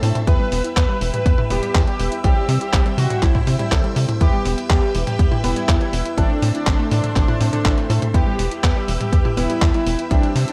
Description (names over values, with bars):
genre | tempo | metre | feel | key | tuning
italo disco | 122 BPM | 4/4 | straight | E minor | A4 = 445 Hz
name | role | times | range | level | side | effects
phased string machine | sustained chords | 0.0-10.5 s | B4 to E6 | -34 LUFS | equal | ensemble chorus, phaser
analog pluck | arpeggios | 0.0-10.5 s | E3 to E4 | -32 LUFS | equal | chorus, delay
bright grand piano | stabs | 0.0-10.5 s | G3 to B4 | -31 LUFS | equal | delay
tight sequencer bass | bass | 0.0-10.5 s | E1 to C3 | -22 LUFS | equal | none
detuned 8-bit digital drum machine | drums | 0.0-10.5 s | handclaps, hi-hat, toms | -27 LUFS | equal | none
analog synth brass | melody | 0.3-10.5 s | D4 to B4 | -27 LUFS | equal | chorus, diffuse ambient delay
electronic kick drum | drums | 0.3-10.2 s | none | -20 LUFS | equal | overdrive
room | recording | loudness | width
light reverb | none | -18 LUFS | mono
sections
0.0-10.5 A section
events
none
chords
0.3 Em; 2.2 C; 4.2 Em; 6.2 Am; 8.1 Em